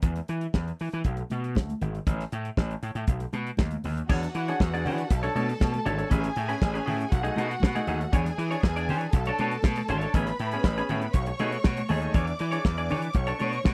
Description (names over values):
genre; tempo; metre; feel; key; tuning
disco; 119 BPM; 4/4; straight; unclear; A4 = 440 Hz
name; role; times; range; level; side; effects
gritty slap bass; bass; 0.0-13.7 s; G#1 to E3; -32 LUFS; equal; overdrive
damped 70s drum kit; drums; 0.0-13.7 s; crash cymbal, hi-hat, kick drum, snare drum; -26 LUFS; equal; none
congas; percussion; 0.0-13.7 s; none; -38 LUFS; equal; none
warm studio violin section; second line; 4.1-13.7 s; F#4 to D6; -36 LUFS; equal; none
semi-hollow electric guitar; accompaniment; 4.1-13.7 s; A3 to D5; -34 LUFS; equal; none
room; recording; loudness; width
little or no reverb; dry, close 1970s-style studio recording; -27 LUFS; mono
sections
0.0-4.1 A section; 4.1-13.7 B section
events
none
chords
0.0 N.C.; 1.1 Bm; 2.1 N.C.; 3.1 B; 4.1 E13; 5.1 Bm9; 6.1 Amaj9; 7.1 B6; 8.1 E6; 9.1 Bm9; 10.1 Amaj9; 11.1 B13; 12.2 E6; 13.2 Bm9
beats
| 0.03 0.54 1.05 1.56 | 2.07 2.58 3.08 3.59 | 4.10 4.60 5.11 5.61 | 6.12 6.62 7.12 7.62 | 8.13 8.63 9.13 9.64 | 10.14 10.64 11.14 11.65 | 12.15 12.65 13.16 13.66